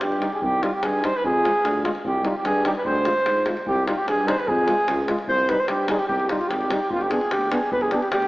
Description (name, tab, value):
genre	balkan folk, Balkan brass band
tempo	148 BPM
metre	2/4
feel	straight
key	C harmonic minor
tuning	A4 = 440 Hz
part	warm flugelhorn	melody	0.0-8.3 s	F4 to C5	-22 LUFS	right 1 dB	none
part	mellow clarinet	second line	0.0-0.4, 2.9-8.3 s	F4 to C5	-27 LUFS	left 1 dB	none
part	mellow tuba	bass	0.0-8.3 s	G1 to Ab2	-28 LUFS	equal	none
part	davul	percussion	0.0-8.3 s	none	-30 LUFS	left 1 dB	none
part	mellow euphonium	accompaniment	0.2-8.0 s	G3 to B3	-32 LUFS	right 1 dB	none
part	warm trombone	accompaniment	0.2-8.0 s	D4 to F4	-31 LUFS	left 2 dB	none
room	wet concert hall reverb, RT60 2.3 s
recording	small speaker sound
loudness	-20 LUFS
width	side -19 dB against mid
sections	0.4-6.9 A section; 6.9-8.3 B section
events	none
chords	0.4 Cm; 1.2 Fm; 2.0 Cm; 2.8 Ddim; 3.7 Cm; 4.5 Fm; 5.3 Cm; 6.9 G